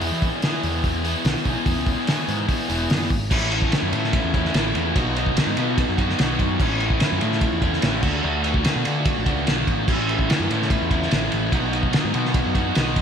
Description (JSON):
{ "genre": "classic rock", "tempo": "146 BPM", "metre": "4/4", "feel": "straight", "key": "unclear", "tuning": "A4 = 440 Hz", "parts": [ { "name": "raw garage guitar", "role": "riff", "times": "0.0-13.0 s", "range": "E2 to G#4", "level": "-23 LUFS", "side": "equal", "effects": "overdrive" }, { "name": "growling picked electric bass", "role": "bass", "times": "0.0-13.0 s", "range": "E1 to E3", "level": "-26 LUFS", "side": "equal", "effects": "overdrive" }, { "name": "cloth-damped thuddy drum kit", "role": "drums", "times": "0.0-13.0 s", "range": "crash cymbal, hi-hat, kick drum, ride cymbal, snare drum", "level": "-22 LUFS", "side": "equal", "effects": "none" } ], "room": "moderate lush hall reverb, RT60 1.7 s", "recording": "big arena sound", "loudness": "-19 LUFS", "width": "side -7 dB against mid", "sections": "0.0-3.3 A section; 3.3-13.0 B section", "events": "none", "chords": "0.0 E; 3.3 A; 5.0 B; 6.6 A; 8.0 D; 9.9 A; 11.5 B" }